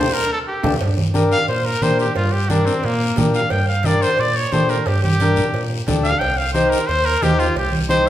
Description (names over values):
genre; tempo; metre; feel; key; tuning
latin, cumbia; 178 BPM; 4/4; straight; G minor; A4 = 440 Hz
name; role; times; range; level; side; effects
bright trumpet; melody; 0.0-8.1 s; Bb3 to G5; -20 LUFS; equal; none
combo organ; accompaniment; 0.0-8.1 s; D4 to C5; -22 LUFS; left 2 dB; none
round analog bass; bass; 0.0-8.1 s; C2 to Bb2; -21 LUFS; equal; none
congas; percussion; 0.6-8.1 s; none; -24 LUFS; right 1 dB; none
guiro; percussion; 0.6-8.1 s; none; -31 LUFS; left 5 dB; none
timbales and cowbell; percussion; 0.6-8.1 s; none; -30 LUFS; right 2 dB; none
room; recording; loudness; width
wet large studio reverb, RT60 1.4 s; band playing live in one room; -16 LUFS; side -12 dB against mid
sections
0.8-8.1 A section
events
drum fill 0.0-0.8; band accent 0.0-0.8; trumpet solo 0.8-8.1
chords
0.0 Dsus4; 0.8 Gm; 6.2 Cm